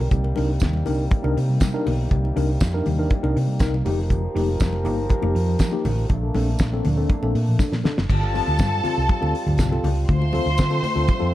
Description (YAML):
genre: disco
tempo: 120 BPM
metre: 4/4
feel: straight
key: C dorian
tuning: A4 = 440 Hz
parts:
  - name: mellow French horn section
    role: sustained chords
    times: 0.0-11.3 s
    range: C3 to Bb4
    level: -30 LUFS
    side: equal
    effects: none
  - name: hollow-body short-scale fingered electric bass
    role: bass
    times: 0.0-11.3 s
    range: F1 to D3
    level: -22 LUFS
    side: equal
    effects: none
  - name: mellow tine electric piano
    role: accompaniment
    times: 0.1-11.3 s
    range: G2 to Bb4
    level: -26 LUFS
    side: left 2 dB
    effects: medium stereo tremolo
  - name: damped 70s drum kit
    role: drums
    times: 0.1-11.2 s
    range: crash cymbal, hi-hat, kick drum, snare drum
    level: -22 LUFS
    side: equal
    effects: none
  - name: congas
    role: percussion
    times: 0.1-11.2 s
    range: none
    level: -32 LUFS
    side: left 3 dB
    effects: none
  - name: tambourine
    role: percussion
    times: 0.6-10.7 s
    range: none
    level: -40 LUFS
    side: right 7 dB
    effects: none
  - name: clear studio string section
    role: second line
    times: 8.1-11.3 s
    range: A4 to C6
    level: -25 LUFS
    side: left 1 dB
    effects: none
room: light reverb, small room ambience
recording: dark, warm production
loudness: -19 LUFS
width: side -14 dB against mid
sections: 0.0-8.1 A section; 8.1-11.3 B section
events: drum fill 7.6-8.1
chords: 0.1 Cm7; 3.9 F9sus4; 6.1 Bbmaj7; 8.1 G9sus4; 10.1 Dm7